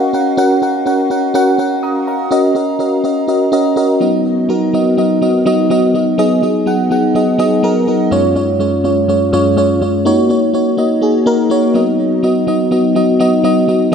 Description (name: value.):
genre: pop.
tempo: 124 BPM.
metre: 4/4.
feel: straight.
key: F# major.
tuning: A4 = 445 Hz.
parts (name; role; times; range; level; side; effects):
FM electric piano with soft pad layer; solo; 0.0-13.9 s; F#2 to D#6; -11 LUFS; equal; chorus.
room: moderate plate reverb, RT60 3.8 s.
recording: none.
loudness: -11 LUFS.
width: side -7 dB against mid.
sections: 0.0-2.3 A section; 2.3-13.9 B section.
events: none.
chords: 0.0 F#; 2.3 F#6; 4.0 B/F#; 6.2 G#m/F#; 8.1 C#/F#; 10.1 F#6; 11.8 B/F#.